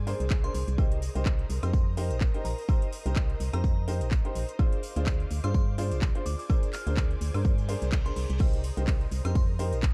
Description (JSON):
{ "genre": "piano house", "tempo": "126 BPM", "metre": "4/4", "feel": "swing 56% on 16ths", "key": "C minor", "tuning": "A4 = 440 Hz", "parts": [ { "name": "analog string pad", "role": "sustained chords", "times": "0.0-9.9 s", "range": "C5 to Eb6", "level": "-49 LUFS", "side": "equal", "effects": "ensemble chorus, sidechain pumping" }, { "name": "organ-like FM bass", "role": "bass", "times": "0.0-9.9 s", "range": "Bb1 to G2", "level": "-32 LUFS", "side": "equal", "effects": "tube saturation, sidechain pumping" }, { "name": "ethereal airy pad", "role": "texture", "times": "0.0-9.9 s", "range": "F4 to Eb5", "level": "-47 LUFS", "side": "equal", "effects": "none" }, { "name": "clear upright piano", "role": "riff", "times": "0.1-9.8 s", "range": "D4 to C5", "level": "-39 LUFS", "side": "equal", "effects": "sidechain pumping" }, { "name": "house drum kit", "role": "drums", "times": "0.1-9.9 s", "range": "crash cymbal, handclaps, hi-hat, ride cymbal, tambourine, woodblock", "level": "-43 LUFS", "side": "equal", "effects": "none" }, { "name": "electronic kick drum", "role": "drums", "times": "0.3-9.9 s", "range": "none", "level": "-28 LUFS", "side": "equal", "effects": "none" }, { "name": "glassy synth bell", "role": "melody", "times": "0.4-9.4 s", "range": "Bb5 to F6", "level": "-48 LUFS", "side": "equal", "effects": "chorus, phaser, tape echo" }, { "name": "reverse cymbal", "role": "sound effects", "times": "7.6-8.4 s", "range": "none", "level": "-52 LUFS", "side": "equal", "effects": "none" } ], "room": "digital ambience", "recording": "dark, warm production", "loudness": "-28 LUFS", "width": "mono", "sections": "0.0-9.9 A section", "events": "reverse cymbal 7.6-8.4", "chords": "0.0 Bb9; 0.8 Cm7; 4.6 Bb9/D; 8.4 Cm7", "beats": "0.31 | 0.78 1.26 1.73 2.21 | 2.69 3.16 3.64 4.12 | 4.59 5.07 5.54 6.02 | 6.50 6.97 7.45 7.92 | 8.40 8.88 9.35 9.83" }